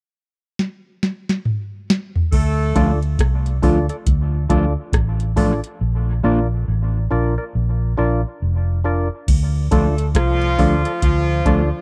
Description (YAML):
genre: dub reggae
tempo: 69 BPM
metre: 4/4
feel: swing 61% on 16ths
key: D minor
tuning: A4 = 436 Hz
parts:
  - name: soft vintage rhythm box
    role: drums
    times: 0.6-11.7 s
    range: crash cymbal, hi-hat, kick drum, rim click, snare drum, toms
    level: -21 LUFS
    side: equal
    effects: overdrive
  - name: mellow horn section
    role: second line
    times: 2.3-3.0, 9.7-11.8 s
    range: F3 to A4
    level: -25 LUFS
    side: equal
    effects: dub echo
  - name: vintage muted fingered electric bass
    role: bass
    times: 2.3-11.7 s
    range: F1 to D2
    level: -21 LUFS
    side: equal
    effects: none
  - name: mellow electric guitar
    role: accompaniment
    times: 2.8-11.6 s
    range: F3 to F4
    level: -24 LUFS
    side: equal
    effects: dub echo
  - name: percussive organ stab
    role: stabs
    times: 2.8-11.7 s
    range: D4 to D5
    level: -28 LUFS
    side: equal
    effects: chorus, dub echo
room: little or no reverb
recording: dry, close 1970s-style studio recording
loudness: -19 LUFS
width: mono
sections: 0.0-2.3 A section; 2.3-9.3 B section; 9.3-11.8 C section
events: drum fill 0.6-2.3; part muted 5.8-9.3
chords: 0.0 N.C.; 2.3 Dm; 5.8 Bb; 9.3 Dm